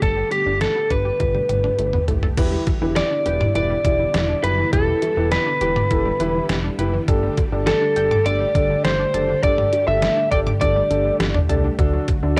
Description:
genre	synth-pop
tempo	102 BPM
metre	4/4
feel	straight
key	E minor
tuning	A4 = 439 Hz
part	lightly driven lead guitar	melody	0.0-12.4 s	G4 to E5	-23 LUFS	equal	analog delay
part	string machine, cellos	sustained chords	0.0-12.4 s	D3 to G4	-32 LUFS	equal	ensemble chorus, cassette tape
part	analog pluck	arpeggios	0.0-12.4 s	D3 to D6	-32 LUFS	equal	chorus, cassette tape, analog delay
part	chorused synth bass	bass	0.0-12.4 s	E1 to D2	-27 LUFS	equal	none
part	detuned 8-bit digital drum machine	drums	0.0-12.4 s	cowbell, crash cymbal, hi-hat, kick drum, snare drum, toms	-25 LUFS	equal	cassette tape
part	dark grand piano	accompaniment	2.4-12.4 s	D4 to D5	-28 LUFS	equal	cassette tape
room	wet booth ambience, RT60 0.2 s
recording	home recording on cassette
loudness	-19 LUFS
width	mono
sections	0.0-2.4 A section; 2.4-12.4 B section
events	drum fill 1.2-2.4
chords	0.0 Gadd9; 2.4 Em7; 7.1 Gsus2; 11.8 D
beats	| 0.02 0.61 1.20 1.79 | 2.38 2.96 3.55 4.14 | 4.73 5.32 5.91 6.49 | 7.08 7.67 8.26 8.85 | 9.44 10.02 10.61 11.20 | 11.79 12.38

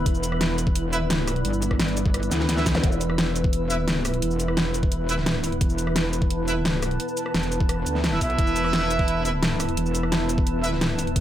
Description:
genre	dark technical drum and bass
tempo	173 BPM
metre	4/4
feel	straight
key	unclear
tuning	A4 = 440 Hz
part	deep dark ambient pad	sustained chords	0.0-11.2 s	E3 to A5	-31 LUFS	right 2 dB	chorus, built-in reverb, sidechain pumping
part	metallic wobble bass	bass	0.0-11.2 s	E1 to D2	-26 LUFS	equal	chorus, tube saturation, sidechain pumping
part	granular cloud pad	texture	0.0-11.2 s	E4 to E6	-30 LUFS	equal	built-in reverb, sidechain pumping
part	dubstep drum kit	drums	0.1-11.2 s	hi-hat, rim click, shaker, snare drum	-26 LUFS	equal	overdrive
part	electronic kick drum	drums	0.1-11.2 s	none	-23 LUFS	equal	overdrive
part	bright brass ensemble	stabs	0.9-10.7 s	E4 to E5	-28 LUFS	right 2 dB	dub echo
part	zap	sound effects	2.7-2.8 s	none	-32 LUFS	equal	none
room	light reverb, digital ambience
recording	none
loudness	-21 LUFS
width	side -12 dB against mid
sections	0.0-11.2 A section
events	drum fill 2.3-2.8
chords	0.0 E5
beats	| 0.06 0.41 0.76 1.10 | 1.45 1.79 2.14 2.49 | 2.84 3.18 3.53 3.88 | 4.22 4.57 4.92 5.26 | 5.61 5.96 6.30 6.65 | 7.00 7.34 7.69 8.04 | 8.38 8.73 9.08 9.43 | 9.77 10.12 10.47 10.81 | 11.16

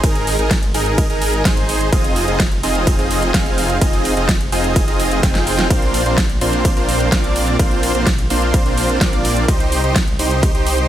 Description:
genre	EDM, festival progressive house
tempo	127 BPM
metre	4/4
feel	straight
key	unclear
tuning	A4 = 441 Hz
part	big supersaw lead	riff	0.0-10.9 s	Bb3 to G5	-18 LUFS	right 1 dB	sidechain pumping, tape echo
part	detuned saw bass	bass	0.0-10.9 s	F1 to C2	-21 LUFS	equal	sidechain pumping
part	big-room dance drum kit	drums	0.0-10.9 s	hi-hat, ride cymbal, snare drum	-22 LUFS	right 1 dB	overdrive
part	electronic kick drum	drums	0.0-10.5 s	none	-17 LUFS	equal	overdrive
room	light reverb, digital ambience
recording	none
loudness	-14 LUFS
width	side -12 dB against mid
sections	0.0-10.9 A section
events	drum fill 5.2-5.7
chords	0.0 Absus2; 1.9 Fm7; 5.7 Bbadd9; 9.5 Cm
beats	| 0.04 0.51 0.98 1.45 | 1.93 2.40 2.87 3.34 | 3.81 4.29 4.76 5.23 | 5.71 6.18 6.65 7.12 | 7.59 8.07 8.54 9.01 | 9.48 9.96 10.43

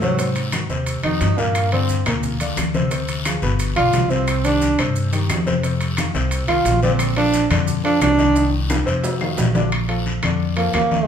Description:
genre	Afro-Cuban jazz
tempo	176 BPM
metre	4/4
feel	straight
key	Bb major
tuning	A4 = 440 Hz
part	breathy tenor saxophone	melody	0.0-8.5, 10.6-11.1 s	Gb3 to F4	-19 LUFS	right 2 dB	none
part	warm upright piano	accompaniment	0.0-11.1 s	Bb2 to Eb5	-24 LUFS	left 2 dB	none
part	upright bass	bass	0.0-11.1 s	G1 to Ab2	-22 LUFS	equal	none
part	congas	percussion	0.0-11.1 s	none	-28 LUFS	equal	none
part	guiro	percussion	0.0-11.1 s	none	-31 LUFS	left 4 dB	none
part	maracas	percussion	0.0-9.7 s	none	-34 LUFS	right 6 dB	none
part	timbales	percussion	0.2-10.9 s	none	-28 LUFS	right 1 dB	none
part	claves	percussion	0.5-10.9 s	none	-32 LUFS	left 4 dB	none
room	moderate large studio reverb, RT60 0.9 s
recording	band playing live in one room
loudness	-17 LUFS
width	side -8 dB against mid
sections	0.0-9.7 A section; 9.7-11.1 A section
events	tenor saxophone solo 0.0-11.1; drum fill 8.4-9.7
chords	0.2 Ab9; 1.6 Gm7; 2.9 Dm7b5; 3.6 G7; 4.3 Cmadd9; 5.6 F5; 7.0 Bbmaj9; 8.4 Cm7; 9.0 F5; 9.7 Bbmaj7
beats	| 0.19 0.53 0.87 1.21 | 1.55 1.89 2.23 2.57 | 2.91 3.25 3.60 3.94 | 4.28 4.62 4.96 5.30 | 5.64 5.98 6.32 6.66 | 7.00 7.34 7.68 8.02 | 8.36 8.70 9.04 9.38 | 9.72 10.06 10.40 10.74

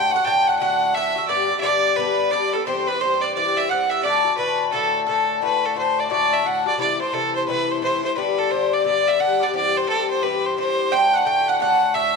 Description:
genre	celtic folk, Celtic hornpipe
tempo	175 BPM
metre	4/4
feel	swing 64% on 8ths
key	D mixolydian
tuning	A4 = 440 Hz
part	clear fiddle	melody	0.0-12.2 s	A4 to A5	-21 LUFS	right 3 dB	none
part	bright tin whistle	second line	0.0-12.2 s	A5 to G6	-31 LUFS	left 6 dB	none
part	mandolin	second line	0.0-5.4, 10.9-12.2 s	A4 to G5	-25 LUFS	right 10 dB	none
part	Irish bouzouki	accompaniment	0.0-12.2 s	G2 to G4	-22 LUFS	left 10 dB	none
room	wet echo chamber reverb, RT60 1.8 s, studio ambience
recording	1960s-style stereo with parts hard left and right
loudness	-18 LUFS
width	side -4 dB against mid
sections	0.0-5.4 A section; 5.4-12.2 A section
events	none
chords	0.0 D; 1.3 G; 2.7 C; 4.0 D; 6.8 Am; 8.2 G; 9.5 C; 10.9 D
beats	0.27 0.61 0.95 | 1.30 1.64 1.99 2.33 | 2.67 3.02 3.36 3.70 | 4.05 4.39 4.73 5.08 | 5.42 5.76 6.11 6.45 | 6.79 7.13 7.48 7.82 | 8.16 8.51 8.85 9.19 | 9.54 9.88 10.22 10.57 | 10.91 11.25 11.60 11.94

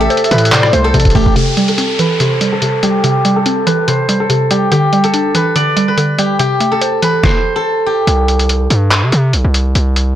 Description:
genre	hip hop, trap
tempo	143 BPM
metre	4/4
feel	half-time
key	C major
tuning	A4 = 442 Hz
part	steel-string zither	melody	0.0-10.2 s	G4 to D5	-15 LUFS	equal	low-pass filter
part	warm velvety synth lead	second line	0.0-0.9 s	C5 to E5	-18 LUFS	left 1 dB	chorus, tape echo
part	mallet-like synth pluck	accompaniment	0.0-8.1 s	C3 to C5	-15 LUFS	right 1 dB	chorus, phaser, low-pass filter
part	distorted 808-style bass	bass	0.0-1.3, 8.1-10.2 s	A1 to C3	-12 LUFS	equal	distortion
part	lo-fi sampler-style drum kit	drums	0.1-10.1 s	handclaps, hi-hat, kick drum, rim click, snare drum	-16 LUFS	equal	none
part	downlifter	sound effects	1.4-4.7 s	none	-23 LUFS	equal	none
room	light reverb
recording	blown-out, overdriven recording, vinyl crackle, overdrive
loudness	-10 LUFS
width	side -11 dB against mid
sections	0.0-1.4 A section; 1.4-8.1 B section; 8.1-10.2 C section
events	drum fill 0.9-1.4; filter sweep 1.4-8.1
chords	0.0 Am; 1.4 C; 4.7 Em7; 6.4 Am; 8.1 C5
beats	0.10 0.52 0.94 | 1.36 1.78 2.20 2.62 | 3.04 3.46 3.88 4.30 | 4.72 5.14 5.56 5.98 | 6.40 6.82 7.24 7.65 | 8.07 8.49 8.91 9.33 | 9.75

